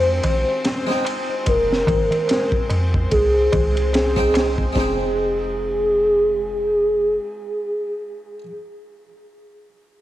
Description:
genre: trip hop.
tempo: 73 BPM.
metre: 4/4.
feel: swing 58% on 16ths.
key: F minor.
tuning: A4 = 440 Hz.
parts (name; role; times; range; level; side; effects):
pure breathy sine lead; melody; 0.0-8.4 s; Ab4 to C5; -20 LUFS; equal; analog chorus, cassette tape, tape echo.
harpsichord; accompaniment; 0.0-8.5 s; Ab3 to G5; -28 LUFS; right 1 dB; tremolo, cassette tape, tape echo.
rich chamber string section; sustained chords; 0.0-4.8 s; C4 to C5; -28 LUFS; left 3 dB; cassette tape.
soft 808-style bass; bass; 0.0-7.2 s; F1 to F2; -24 LUFS; equal; none.
backwards swelling texture; texture; 0.0-4.8 s; Ab3; -38 LUFS; equal; built-in reverb, cassette tape.
darbuka; percussion; 0.1-4.7 s; none; -27 LUFS; right 2 dB; none.
crunchy breakbeat drum kit; drums; 0.2-5.0 s; kick drum, ride cymbal, snare drum; -24 LUFS; equal; cassette tape.
room: small room ambience.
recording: home recording on cassette.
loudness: -17 LUFS.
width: side -14 dB against mid.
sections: 0.0-4.8 A section; 4.8-8.0 B section.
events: none.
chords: 0.0 Fm7.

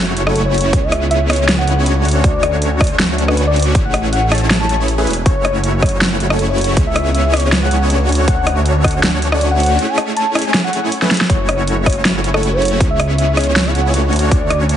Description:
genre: future bass.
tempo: 159 BPM.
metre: 4/4.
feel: swing 53% on 16ths, half-time.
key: F# minor.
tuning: A4 = 440 Hz.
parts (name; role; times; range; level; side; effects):
supersaw chords; riff; 0.0-14.8 s; A3 to C#5; -19 LUFS; equal; sidechain pumping.
wide detuned saw bass; bass; 0.0-14.8 s; E1 to D2; -17 LUFS; equal; chorus, sidechain pumping.
sub drop; sound effects; 0.0-0.7 s; none; barely audible; none; none.
big-room dance drum kit; drums; 0.2-14.8 s; hi-hat, rim click, snare drum; -18 LUFS; equal; overdrive.
warm velvety synth lead; melody; 0.3-14.6 s; A4 to A5; -20 LUFS; left 1 dB; chorus, sidechain pumping, ping-pong delay.
electronic kick drum; drums; 0.7-8.9, 11.3-14.4 s; none; -16 LUFS; equal; overdrive.
room: light reverb.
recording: heavily compressed radio sound, nothing above 10.5 kHz.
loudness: -12 LUFS.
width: side -10 dB against mid.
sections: 0.0-14.8 A section.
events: impact 0.0-0.7; drum fill 11.0.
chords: 0.0 F#m7; 0.7 C#m7; 2.1 Dmaj7; 3.7 Amaj7; 5.3 F#m7; 6.8 C#m7; 8.1 Dmaj7; 9.8 Amaj7; 11.3 F#m7; 12.8 C#m7; 14.1 Dmaj7.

